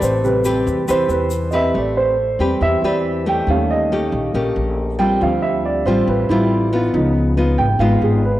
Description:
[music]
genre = bossa nova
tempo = 139 BPM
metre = 4/4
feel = straight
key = A minor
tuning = A4 = 440 Hz
[part]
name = nylon-string guitar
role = accompaniment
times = 0.0-8.4 s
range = A2 to B4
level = -20 LUFS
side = left 2 dB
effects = cassette tape
[part]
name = warm baby grand piano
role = accompaniment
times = 0.0-8.4 s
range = C3 to G5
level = -19 LUFS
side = right 2 dB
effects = cassette tape
[part]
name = upright bass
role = bass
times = 0.0-8.4 s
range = G#1 to E2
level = -21 LUFS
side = left 1 dB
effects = none
[part]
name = egg shaker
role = percussion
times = 0.0-1.7 s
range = none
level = -35 LUFS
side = left 6 dB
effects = none
[sound]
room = light reverb, studio reverb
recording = home recording on cassette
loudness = -15 LUFS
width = side -14 dB against mid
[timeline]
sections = 0.0-1.7 A section; 1.7-8.4 A section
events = grand piano solo 0.0-8.4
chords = 0.0 Am9; 3.5 D#7#11; 5.2 Dm7; 6.9 C#9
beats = | 0.02 0.45 0.88 1.31 | 1.75 2.18 2.61 3.04 | 3.48 3.91 4.34 4.78 | 5.21 5.64 6.07 6.51 | 6.94 7.37 7.80 8.24

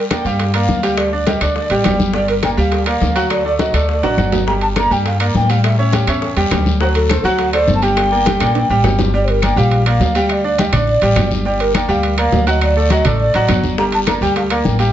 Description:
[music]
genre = latin, salsa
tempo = 206 BPM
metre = 4/4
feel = straight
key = G minor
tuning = A4 = 444 Hz
[part]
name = breathy alto ocarina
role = melody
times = 0.0-14.9 s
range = A4 to Bb5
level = -19 LUFS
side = equal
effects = plate reverb, tape echo
[part]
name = bright grand piano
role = accompaniment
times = 0.0-14.9 s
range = F#3 to G5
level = -18 LUFS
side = right 1 dB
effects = none
[part]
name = bongos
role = percussion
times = 0.1-9.1, 13.8-14.9 s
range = none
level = -26 LUFS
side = left 6 dB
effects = none
[part]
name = claves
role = percussion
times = 0.1-14.7 s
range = none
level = -30 LUFS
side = left 8 dB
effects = none
[part]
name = congas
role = percussion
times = 0.1-14.9 s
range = none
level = -22 LUFS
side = left 2 dB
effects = none
[part]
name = guiro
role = percussion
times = 0.1-14.9 s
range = none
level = -31 LUFS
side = left 6 dB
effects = none
[part]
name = timbales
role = percussion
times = 0.1-14.9 s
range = none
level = -24 LUFS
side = right 6 dB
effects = none
[part]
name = upright bass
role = bass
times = 0.2-14.9 s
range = G1 to A2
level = -18 LUFS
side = equal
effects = none
[sound]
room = light reverb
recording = nothing above 7.8 kHz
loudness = -13 LUFS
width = side -11 dB against mid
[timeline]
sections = 0.0-9.1 A section; 9.1-14.9 A section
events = drum fill 4.0-4.5, 8.4-9.1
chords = 0.0 Gm7; 1.0 Dsus4; 2.1 Gm7; 3.3 D; 4.5 Gm; 5.6 A7; 6.8 D7; 8.0 Gm; 9.1 Gm7; 10.3 Dsus4; 11.5 Gm7; 12.6 D; 13.8 Gm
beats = 0.11 0.40 0.69 | 0.98 1.27 1.56 1.85 | 2.14 2.43 2.73 3.02 | 3.31 3.60 3.89 4.18 | 4.47 4.77 5.06 5.35 | 5.64 5.93 6.22 6.51 | 6.80 7.10 7.39 7.68 | 7.97 8.26 8.55 8.84 | 9.13 9.42 9.71 10.01 | 10.29 10.59 10.88 11.17 | 11.46 11.75 12.04 12.33 | 12.62 12.91 13.20 13.49 | 13.78 14.07 14.36 14.65

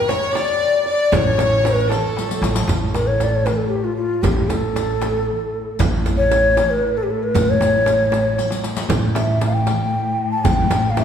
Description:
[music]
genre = Persian modal ensemble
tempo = 77 BPM (dotted quarters)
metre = 6/8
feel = straight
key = A dastgah homayun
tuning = A4 = 440 Hz
[part]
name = breathy mellow ney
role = melody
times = 0.0-11.0 s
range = F4 to A5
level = -19 LUFS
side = left 2 dB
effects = none
[part]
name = bright chamber violin section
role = second line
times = 0.0-2.5 s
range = A4 to D5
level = -26 LUFS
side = right 1 dB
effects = none
[part]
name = santur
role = second line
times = 0.0-4.8 s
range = G4 to D5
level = -29 LUFS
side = right 3 dB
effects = none
[part]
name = frame drum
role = percussion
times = 0.1-11.0 s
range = none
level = -25 LUFS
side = right 4 dB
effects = none
[part]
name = riq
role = percussion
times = 0.1-11.0 s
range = none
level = -30 LUFS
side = left 3 dB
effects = none
[part]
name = tombak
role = percussion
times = 0.1-11.0 s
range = none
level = -28 LUFS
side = left 1 dB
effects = none
[part]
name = upright bass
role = bass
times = 1.1-11.0 s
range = A1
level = -22 LUFS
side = right 1 dB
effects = none
[part]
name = warm studio cello section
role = drone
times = 2.7-11.0 s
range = A2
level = -26 LUFS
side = left 4 dB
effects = none
[sound]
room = wet recital hall reverb, RT60 1.8 s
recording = heard from further back in the room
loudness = -16 LUFS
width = side -8 dB against mid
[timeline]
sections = 0.0-2.7 A section; 2.7-11.0 B section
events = drum fill 2.2-2.7, 8.4-8.9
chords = none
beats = 0.36 | 1.14 1.91 | 2.69 3.46 | 4.24 5.01 | 5.79 6.57 | 7.34 8.12 | 8.90 9.68 | 10.46

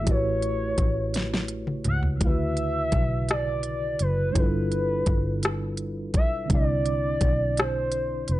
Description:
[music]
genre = slow six-eight R&B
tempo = 56 BPM (dotted quarters)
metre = 6/8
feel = straight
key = unclear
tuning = A4 = 440 Hz
[part]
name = gliding portamento lead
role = melody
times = 0.0-8.4 s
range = B4 to F#5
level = -28 LUFS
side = equal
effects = chorus
[part]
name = mellow tine electric piano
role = accompaniment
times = 0.0-8.4 s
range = C#3 to D5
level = -31 LUFS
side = right 1 dB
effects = medium stereo tremolo
[part]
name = vintage muted fingered electric bass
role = bass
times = 0.0-8.4 s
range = E#1 to D2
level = -28 LUFS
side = equal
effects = none
[part]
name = smooth R&B drum kit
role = drums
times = 0.1-8.4 s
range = hi-hat, kick drum, rim click, snare drum, toms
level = -25 LUFS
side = equal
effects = overdrive
[sound]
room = little or no reverb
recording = nothing above 11.0 kHz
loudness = -23 LUFS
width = side -16 dB against mid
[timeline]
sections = 0.0-8.4 A section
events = drum fill 1.1-2.2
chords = 0.1 A13; 2.2 Dmaj13; 4.4 G13; 6.5 Cmaj9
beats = | 0.07 1.14 | 2.21 3.28 | 4.36 5.43 | 6.50 7.57

